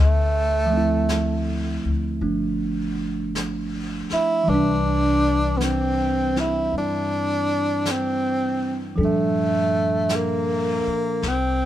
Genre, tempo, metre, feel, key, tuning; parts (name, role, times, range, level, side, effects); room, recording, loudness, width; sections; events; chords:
jazz ballad; 53 BPM; 4/4; swing 67% on 8ths; C major; A4 = 437 Hz
breathy tenor saxophone; melody; 0.0-11.7 s; A3 to E4; -22 LUFS; right 1 dB
upright bass; bass; 0.0-11.7 s; G1 to G2; -26 LUFS; left 1 dB
bell-like tine electric piano; accompaniment; 0.7-11.2 s; Bb2 to B4; -25 LUFS; right 2 dB
vintage brush drum kit; drums; 1.1-11.7 s; brushed snare drum, hi-hat, snare drum; -34 LUFS; left 2 dB
little or no reverb; minimal, uncompressed stereo recording; -20 LUFS; side -12 dB against mid
0.0-11.7 A section
0.0 Dm9; 2.2 G7; 4.5 Cmaj7; 9.0 Gm7